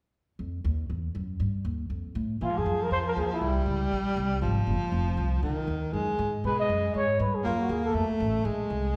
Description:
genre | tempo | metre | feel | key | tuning
jazz | 238 BPM | 4/4 | swing 58% on 8ths | Bb minor | A4 = 441 Hz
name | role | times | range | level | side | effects
upright bass | bass | 0.4-8.9 s | F1 to B2 | -32 LUFS | equal | none
breathy trumpet | melody | 2.4-3.6, 6.5-8.1 s | E4 to D#5 | -31 LUFS | equal | none
breathy baritone saxophone | second line | 2.4-9.0 s | Eb3 to Bb3 | -32 LUFS | equal | none
room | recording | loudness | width
wet scoring stage reverb, RT60 1.5 s | recorded in a church or concert hall | -28 LUFS | mono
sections
0.4-2.4 A section; 2.4-9.0 B section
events
none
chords
0.4 Ebsus2; 0.9 Esus2; 1.4 Eb; 1.9 F; 2.4 Bb7sus4 (rootless); 3.4 C7b9; 4.4 Fm; 5.4 Dbsus2; 5.9 Gbsus2; 6.4 B6; 7.4 Ebmadd9; 7.9 F; 8.4 Bb7sus2

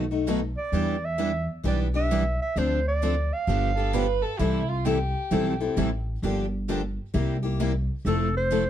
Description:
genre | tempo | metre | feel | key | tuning
acoustic string swing (jazz manouche) | 131 BPM | 4/4 | swing 64% on 8ths | C major | A4 = 438 Hz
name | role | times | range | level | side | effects
picked steel-string acoustic guitar | accompaniment | 0.0-8.6 s | B2 to A4 | -28 LUFS | left 7 dB | none
picked steel-string acoustic guitar | accompaniment | 0.0-8.6 s | B2 to B4 | -30 LUFS | right 8 dB | none
upright bass | bass | 0.0-8.7 s | F1 to E2 | -27 LUFS | equal | none
clear clarinet | melody | 0.6-4.2, 8.1-8.7 s | A4 to F5 | -28 LUFS | right 3 dB | plate reverb
dark violin | second line | 3.8-5.8 s | E4 to B4 | -30 LUFS | right 3 dB | none
room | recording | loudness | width
light reverb | dark, warm production, faint mains hum | -23 LUFS | side -10 dB against mid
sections
0.0-8.1 A section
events
none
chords
0.0 B7; 0.7 Em7; 2.6 Dm7; 3.5 G7; 4.4 C6; 6.2 Gm7; 7.1 C7; 8.1 Fmaj7

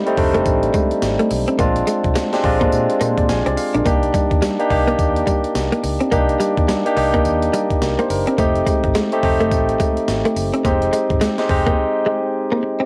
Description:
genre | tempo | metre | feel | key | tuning
R&B, new jack swing | 106 BPM | 4/4 | swing 61% on 16ths | F dorian | A4 = 444 Hz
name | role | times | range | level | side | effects
barky tine electric piano | accompaniment | 0.0-12.9 s | G3 to Ab5 | -20 LUFS | equal | cassette tape, plate reverb
direct-recorded clean electric guitar | riff | 0.0-12.9 s | G3 to D4 | -24 LUFS | equal | ensemble chorus, cassette tape
breakbeat sampler-style drum kit | drums | 0.1-11.8 s | hi-hat, kick drum, snare drum, tambourine | -24 LUFS | equal | cassette tape
vintage muted fingered electric bass | bass | 0.2-11.7 s | F1 to Bb2 | -26 LUFS | equal | none
room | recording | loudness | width
moderate studio ambience, RT60 0.5 s | home recording on cassette | -18 LUFS | mono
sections
0.0-12.9 A section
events
tine electric piano fill 3.0-3.9; break 11.8-12.9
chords
0.0 F7; 1.6 Bb7; 3.9 Cm7; 8.4 F7; 10.6 Fm7

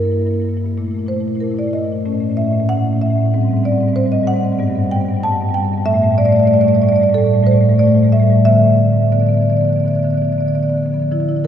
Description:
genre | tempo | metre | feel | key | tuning
classical, contemporary piece for solo marimba | 93 BPM | 4/4 | straight | D minor | A4 = 440 Hz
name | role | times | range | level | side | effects
marimba with soft mallets | solo | 0.0-11.5 s | G2 to A5 | -13 LUFS | equal | none
room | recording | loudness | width
wet cathedral reverb, RT60 6.8 s | heard from further back in the room | -13 LUFS | side -9 dB against mid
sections
0.0-11.1 A section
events
none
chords
0.0 Gm6; 0.8 Bbmaj7(b5, no3); 2.0 A; 3.3 G#maj7; 4.6 G; 5.9 A7sus4; 8.5 Dm6

